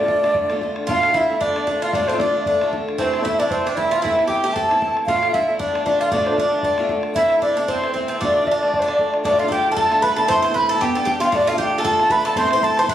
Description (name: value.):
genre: celtic folk, Celtic reel.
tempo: 230 BPM.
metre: 4/4.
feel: swing 57% on 8ths.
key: D dorian.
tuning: A4 = 439 Hz.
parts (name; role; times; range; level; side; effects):
bright wooden flute; melody; 0.0-12.9 s; C5 to C6; -19 LUFS; equal; none.
picked swing-style acoustic guitar; accompaniment; 0.0-12.9 s; D2 to G4; -24 LUFS; left 1 dB; none.
bodhran; percussion; 0.1-12.9 s; none; -33 LUFS; left 1 dB; none.
Irish bouzouki; second line; 0.9-12.9 s; C4 to C5; -22 LUFS; right 2 dB; none.
room: moderate studio reverb, RT60 0.6 s.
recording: recorded on a phone in the room, studio reverb, compression.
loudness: -16 LUFS.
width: side -11 dB against mid.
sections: 0.9-9.2 A section; 9.2-12.9 B section.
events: none.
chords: 0.0 Dm; 3.0 Am/C; 5.1 Dm; 7.2 Am/C; 8.2 Dm; 10.3 Am; 10.8 G; 11.3 Dm; 12.4 Am.